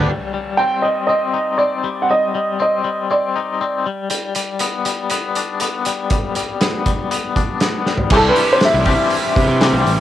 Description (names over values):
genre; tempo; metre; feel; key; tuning
indie rock; 120 BPM; 4/4; straight; unclear; A4 = 440 Hz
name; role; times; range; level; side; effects
biting overdriven guitar; riff; 0.0-0.1, 8.1-10.0 s; C3 to E4; -23 LUFS; right 10 dB; ensemble chorus
twangy electric guitar; riff; 0.0-10.0 s; E3 to G4; -20 LUFS; left 7 dB; tremolo
fuzz picked electric bass; bass; 0.0-0.1, 8.1-10.0 s; A1 to C3; -18 LUFS; right 1 dB; overdrive
warm upright piano; melody; 0.6-3.8, 8.1-9.6 s; Ab4 to G5; -17 LUFS; right 1 dB; tape echo
loose indie drum kit; drums; 4.1-10.0 s; crash cymbal, hi-hat, kick drum, snare drum, toms; -20 LUFS; right 1 dB; cassette tape
room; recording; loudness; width
light reverb; home recording on cassette; -15 LUFS; side -12 dB against mid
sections
0.1-8.1 A section; 8.1-10.0 B section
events
drum fill 7.9; upright piano solo 8.1-10.0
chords
0.1 Cm; 3.8 G; 8.1 Cadd9